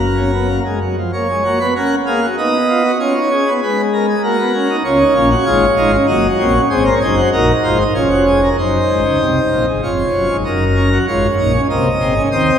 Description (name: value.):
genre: classical, baroque-style 4-part fugue for pipe organ.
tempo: 97 BPM.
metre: 3/4.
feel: straight.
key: F# major.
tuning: A4 = 441 Hz.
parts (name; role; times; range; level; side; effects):
pipe organ, plenum; solo; 0.0-12.6 s; E#1 to F#5; -12 LUFS; equal; none.
room: wet church reverb, RT60 2.9 s.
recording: recorded in a church or concert hall.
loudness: -12 LUFS.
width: side -8 dB against mid.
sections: 0.0-1.1 A section; 1.1-8.6 B section; 8.6-12.6 A section.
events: none.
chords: 0.0 F#; 2.4 B; 3.0 C#7; 4.2 F#/A#; 4.9 C#; 6.1 F#; 6.7 G#7; 8.0 C#/E#; 8.6 G#7/F#; 9.8 C#/E#; 10.5 D#m7/F#; 11.7 G#/B#.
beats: 0.50 | 1.14 1.76 2.38 | 3.00 3.62 4.24 | 4.85 5.47 6.09 | 6.71 7.33 7.95 | 8.58 9.21 9.83 | 10.46 11.08 11.70 | 12.30.